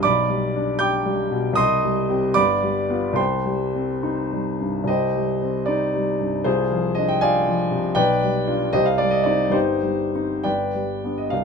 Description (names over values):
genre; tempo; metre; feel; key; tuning
classical, romantic character piece for solo piano; 63-81 BPM (dotted quarters); 6/8; rubato; C minor; A4 = 440 Hz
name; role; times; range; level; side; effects
warm concert grand piano; solo; 0.0-11.4 s; G1 to G6; -19 LUFS; equal; none
room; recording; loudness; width
moderate studio ambience, RT60 0.5 s; none; -19 LUFS; side -5 dB against mid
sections
0.0-4.9 A section; 4.9-11.4 B section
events
none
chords
0.0 G/B; 1.6 Cm; 2.4 G7; 3.2 Cm; 6.5 Dm7b5/C; 8.0 G7/B; 8.7 Cm; 9.5 Cm/G; 10.5 G